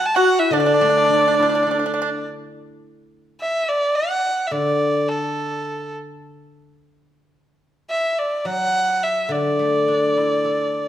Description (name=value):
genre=chinese traditional, Chinese chamber ensemble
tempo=106 BPM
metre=4/4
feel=rubato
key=D gong mode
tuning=A4 = 440 Hz
part: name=rich erhu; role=melody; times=0.0-10.9 s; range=A4 to A5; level=-19 LUFS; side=equal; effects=none
part: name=breathy xiao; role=second line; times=0.2-2.3 s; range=D4 to F#4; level=-22 LUFS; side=left 3 dB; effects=none
part: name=pipa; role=second line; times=0.2-2.1 s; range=D4 to F#4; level=-23 LUFS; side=right 5 dB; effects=none
part: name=guzheng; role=accompaniment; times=0.5-10.9 s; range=D3 to A4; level=-24 LUFS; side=left 1 dB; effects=none
room=moderate recital hall reverb, RT60 1.4 s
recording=minimal, uncompressed stereo recording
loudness=-17 LUFS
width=side -11 dB against mid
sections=0.0-2.8 A section; 2.8-10.9 B section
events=none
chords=none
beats=| 0.53 1.10 1.67 2.25 | 2.84 3.41 3.98 4.54 | 5.11 5.67 6.23 6.80 | 7.35 7.91 8.46 9.03 | 9.59 10.16 10.74